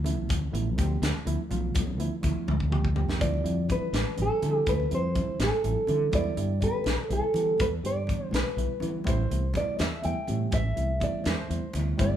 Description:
electric jazz fusion; 82 BPM (dotted quarters); 6/8; straight; D dorian; A4 = 440 Hz
barky reed electric piano; accompaniment; 0.0-12.2 s; C3 to G4; -35 LUFS; right 4 dB; overdrive
fretless electric bass; bass; 0.0-12.2 s; G1 to E3; -29 LUFS; equal
congas; percussion; 0.0-12.2 s; -38 LUFS; equal
tight funk drum kit; drums; 0.1-12.1 s; hi-hat, kick drum, snare drum, toms; -31 LUFS; left 1 dB
nylon-string guitar; melody; 3.2-12.2 s; A4 to G5; -29 LUFS; right 1 dB
moderate large studio reverb, RT60 1.1 s; band playing live in one room; -25 LUFS; side -10 dB against mid
0.0-3.2 A section; 3.2-12.2 B section
drum fill 2.5-3.2
0.0 Dm69; 3.2 Dm11; 6.1 Em7; 9.1 Am9
| 0.29 1.02 | 1.75 2.48 | 3.21 3.94 | 4.67 5.40 | 6.13 6.86 | 7.59 8.32 | 9.05 9.79 | 10.52 11.25 | 11.98

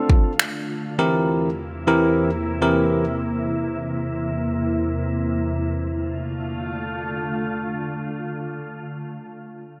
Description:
dance-pop; free time; F major; A4 = 441 Hz
bell-like tine electric piano; accompaniment; 0.0-3.0 s; E3 to Bb4; -22 LUFS; equal; sidechain pumping
glassy FM pad; sustained chords; 0.0-8.9 s; E2 to F4; -27 LUFS; equal; ensemble chorus, built-in reverb, sidechain pumping
downlifter; sound effects; 0.0-1.0 s; barely audible
deep house drum kit; drums; 0.1-0.5 s; finger snaps, kick drum; -20 LUFS; equal
moderate lush hall reverb, RT60 2.1 s; -23 LUFS; mono
0.0-5.7 A section; 5.7-8.1 B section
0.0 F6; 1.0 C7/E; 5.7 F6
free time

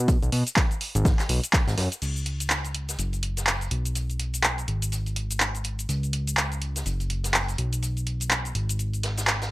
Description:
piano house; 124 BPM; 4/4; swing 59% on 16ths; A4 = 441 Hz
fat analog bass; bass; 0.0-9.5 s; F#1 to B2; -27 LUFS; equal; sidechain pumping
electronic kick drum; drums; 0.1-1.6 s; -22 LUFS; equal
punchy analog drum machine; drums; 0.1-9.5 s; cabasa, crash cymbal, handclaps, hi-hat; -26 LUFS; equal
vintage drum kit; drums; 0.1-9.5 s; hi-hat, snare drum; -39 LUFS; right 1 dB; high-pass filter on hats, low-pass filter on hats, high-pass filter on snare, low-pass filter on snare, high-pass filter on room, low-pass filter on room
little or no reverb; dry, gritty hardware recording; -23 LUFS; side -19 dB against mid
0.0-2.0 A section; 2.0-9.5 B section
| 0.08 0.57 1.05 1.53 | 2.02 2.50 2.99 3.47 | 3.95 4.44 4.92 5.41 | 5.89 6.37 6.86 7.34 | 7.83 8.31 8.79 9.28

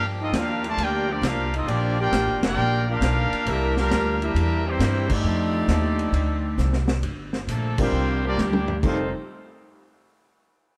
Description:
jazz, big band swing; 134 BPM; 4/4; swing 67% on 8ths; F major, F mixolydian from 7.0 s; A4 = 440 Hz
brilliant trumpet section; melody; 0.0-9.1 s; Bb3 to A5; -30 LUFS; equal
clear trombone section; second line; 0.0-9.1 s; F2 to G4; -30 LUFS; equal
warm saxophone section; sustained chords; 0.0-6.5 s; D3 to D5; -36 LUFS; equal
upright bass; bass; 0.0-9.1 s; F1 to G2; -27 LUFS; equal
vintage drum kit; drums; 0.3-9.0 s; crash cymbal, hi-hat, kick drum, ride cymbal, snare drum, toms; -31 LUFS; equal
dark upright piano; accompaniment; 7.8-9.1 s; G3 to Bb4; -31 LUFS; equal
moderate echo chamber reverb, RT60 1.8 s; heard from further back in the room; -23 LUFS; mono
0.0-7.0 A section; 7.0-8.8 B section; 8.8-10.6 C section
band accent 2.3, 5.0, 7.7; drum fill 6.6-7.0, 8.4-8.8
0.0 Gm7; 3.5 C9; 5.2 F13; 7.0 Gm9; 7.9 C9sus4; 8.8 F9
0.33 0.78 1.22 | 1.67 2.12 2.56 3.01 | 3.46 3.90 4.35 4.80 | 5.24 5.69 6.14 6.58 | 7.03 7.48 7.93 8.37 | 8.82

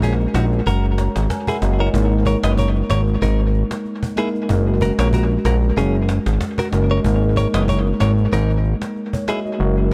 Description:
afrobeats; 94 BPM; 4/4; swing 55% on 16ths; A4 = 444 Hz
mellow tine electric piano; accompaniment; 0.0-9.9 s; G#3 to A#5; -25 LUFS; equal; dub echo
direct-recorded clean electric guitar; riff; 0.0-9.4 s; C#4 to D#5; -28 LUFS; equal; dub echo
fat analog bass; bass; 0.0-9.9 s; F#1 to A#1; -20 LUFS; equal
cajon; drums; 0.0-9.8 s; -30 LUFS; equal; dub echo
digital ambience; echo-heavy mix; -18 LUFS; mono
0.0-9.9 A section
kick muted 9.6-9.9
0.0 F#add9; 1.9 G#sus2; 4.5 F#add9; 7.0 G#sus2
0.02 0.66 1.30 | 1.94 2.58 3.21 3.85 | 4.49 5.13 5.77 6.41 | 7.04 7.68 8.32 8.96 | 9.60

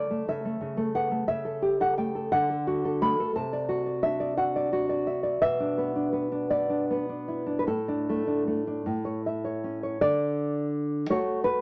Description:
romantic piece for solo classical guitar; 50-60 BPM (dotted quarters); 6/8; rubato; D major; A4 = 440 Hz
nylon-string guitar; solo; 0.0-11.6 s; A2 to B5; -28 LUFS; equal
moderate studio reverb, RT60 0.6 s; -28 LUFS; mono
0.0-10.0 A section; 10.0-11.6 B section
0.0 F#m7; 1.3 A7/C#; 2.3 D; 3.4 D7/C; 5.4 Bmadd11; 7.7 D5/A; 8.9 A; 10.0 D
0.27 | 1.29 2.32 | 3.35 4.39 | 5.41 6.50 | 7.67 8.85 | 10.00 11.10

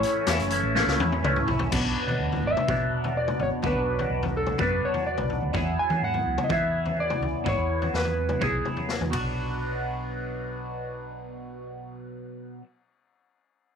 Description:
psychedelic rock; 125 BPM; 4/4; straight; B dorian; A4 = 440 Hz
electric slide guitar; melody; 0.0-8.7 s; G#4 to G#5; -28 LUFS; equal; slapback echo
percussive tonewheel organ; sustained chords; 0.0-5.5 s; F#4 to E5; -40 LUFS; right 13 dB; slow rotary speaker, chorus vibrato
twangy electric guitar; riff; 0.0-12.6 s; A2 to G#4; -29 LUFS; right 1 dB; phaser, double-tracked left and right
raw garage drum kit; drums; 0.0-9.2 s; crash cymbal, hi-hat, kick drum, ride cymbal, snare drum, toms; -30 LUFS; left 4 dB
hollow-body short-scale fingered electric bass; bass; 0.3-12.2 s; F#1 to E3; -30 LUFS; right 1 dB
light reverb, small room ambience; 1960s-style stereo; -24 LUFS; side -7 dB against mid
0.0-1.7 A section; 1.7-9.4 B section; 9.4-13.2 C section
drum fill 0.8-1.7; electric slide guitar solo 1.7-9.4
0.0 A; 1.7 Bm; 5.5 Eadd9; 9.1 Bm
0.29 0.77 1.25 | 1.73 2.20 2.68 3.16 | 3.63 4.11 4.59 5.07 | 5.55 6.03 6.50 6.98 | 7.46 7.94 8.42 8.90 | 9.38 9.85 10.33 10.81 | 11.29 11.77 12.25

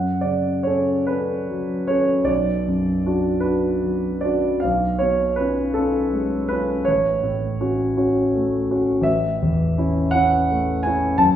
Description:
classical, romantic nocturne for solo piano; 47-57 BPM (dotted quarters); 6/8; rubato; F# minor; A4 = 438 Hz
warm grand piano; solo; 0.0-11.4 s; A1 to A5; -18 LUFS; equal
wet stone room reverb, RT60 1.3 s; heard from further back in the room; -18 LUFS; side -10 dB against mid
0.0-11.4 A section
0.0 F#m; 2.3 Bm; 4.6 C#7/B; 6.9 F#m/A; 9.1 A
1.09 | 2.29 3.45 | 4.63 5.76 | 6.88 7.99 | 9.06 10.15 | 11.21

